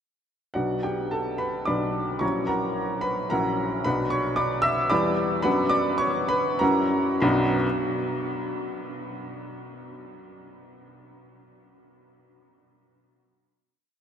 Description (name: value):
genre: classical, romantic character piece for solo piano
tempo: 94-114 BPM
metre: 3/4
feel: rubato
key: B minor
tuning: A4 = 443 Hz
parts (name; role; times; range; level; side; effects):
- clear upright piano; solo; 0.5-7.7 s; A#1 to E6; -23 LUFS; equal; none
room: wet huge ambient reverb, RT60 8.0 s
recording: in a vast, echoing space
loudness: -22 LUFS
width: side -8 dB against mid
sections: 0.6-7.2 A section; 7.2-9.0 final chord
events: none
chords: 0.6 Bm; 2.2 F#7/A#; 3.9 Bm; 4.9 Em7; 5.5 Bm/F#; 6.6 F#7; 7.2 Bm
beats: | 0.56 1.12 1.68 | 2.22 2.77 3.32 | 3.85 4.38 4.91 | 5.46 6.02 6.61 | 7.23